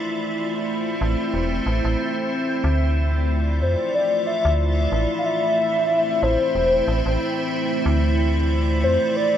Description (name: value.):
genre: IDM.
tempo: 92 BPM.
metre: 4/4.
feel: swing 56% on 16ths.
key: D minor.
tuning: A4 = 440 Hz.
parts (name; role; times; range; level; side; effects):
icy glass pad; sustained chords; 0.0-9.4 s; A3 to D5; -23 LUFS; equal; chorus, built-in reverb.
metallic FM bass; bass; 1.0-9.0 s; E1 to F2; -21 LUFS; equal; none.
warbly nostalgic lead; melody; 3.6-9.4 s; C5 to F5; -21 LUFS; left 2 dB; analog chorus, tape echo.
room: moderate lush hall reverb, RT60 2.4 s.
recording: worn, warbling old tape, cassette tape, warbly pitch drift.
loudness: -19 LUFS.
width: side -10 dB against mid.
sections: 0.0-9.4 A section.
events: none.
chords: 0.0 Am; 2.6 Dmadd9; 5.2 Am; 7.9 Dmadd9.